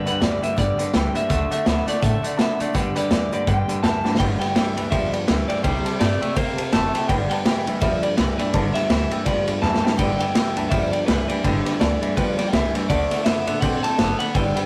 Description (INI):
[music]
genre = rockabilly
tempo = 166 BPM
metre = 4/4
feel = swing 59% on 8ths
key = G major, G mixolydian from 4.2 s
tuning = A4 = 440 Hz
[part]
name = electric guitar through a small old amp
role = melody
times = 0.0-14.7 s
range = B4 to A5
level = -28 LUFS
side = equal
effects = none
[part]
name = picked steel-string acoustic guitar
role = accompaniment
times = 0.0-14.7 s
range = G2 to A4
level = -35 LUFS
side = equal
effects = none
[part]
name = twangy electric guitar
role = riff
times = 0.0-14.7 s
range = G2 to C4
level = -29 LUFS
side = equal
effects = none
[part]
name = tack piano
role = accompaniment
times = 0.1-14.7 s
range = A4 to A5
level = -34 LUFS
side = equal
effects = none
[part]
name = upright bass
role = bass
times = 0.1-14.6 s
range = F1 to C3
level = -29 LUFS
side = equal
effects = none
[part]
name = vintage drum kit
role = drums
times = 0.1-14.6 s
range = hi-hat, kick drum, ride cymbal, snare drum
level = -25 LUFS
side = equal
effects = none
[sound]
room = light reverb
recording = rough rehearsal-room recording, warm saturation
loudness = -21 LUFS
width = mono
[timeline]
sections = 0.0-4.2 A section; 4.2-14.7 B section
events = drum fill 4.0, 9.6-10.0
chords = 0.0 G; 1.3 D7; 2.7 G; 5.6 C; 7.1 G; 12.9 D7